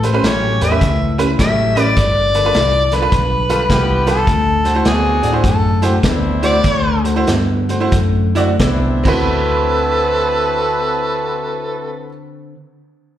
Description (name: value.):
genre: electric blues shuffle.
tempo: 83-104 BPM.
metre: 4/4.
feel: swing 65% on 8ths.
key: D mixolydian.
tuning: A4 = 441 Hz.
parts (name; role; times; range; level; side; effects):
mellow harmonica; melody; 0.0-7.0 s; G#4 to E5; -17 LUFS; left 1 dB; overdrive, slapback echo.
tack piano; accompaniment; 0.0-12.1 s; C4 to D5; -21 LUFS; right 5 dB; slapback echo.
electric guitar through a small old amp; riff; 0.0-12.6 s; G2 to B4; -22 LUFS; left 4 dB; spring reverb, slapback echo.
vintage muted fingered electric bass; bass; 0.0-12.1 s; G1 to A2; -18 LUFS; equal; none.
vintage drum kit; drums; 0.0-9.2 s; crash cymbal, hi-hat, kick drum, snare drum; -19 LUFS; equal; none.
warm horn section; stabs; 0.2-12.1 s; A3 to B4; -22 LUFS; left 2 dB; slapback echo.
overdriven harmonica; second line; 9.1-12.1 s; E4 to A4; -19 LUFS; right 3 dB; slapback echo.
room: light reverb.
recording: live gig heard through the venue's PA, recital hall reverb.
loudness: -13 LUFS.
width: side -11 dB against mid.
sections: 0.0-9.3 A section; 9.3-12.2 B section.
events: slowing down 4.3-9.3.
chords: 0.0 A7; 2.0 G7; 4.3 D7; 8.9 D13.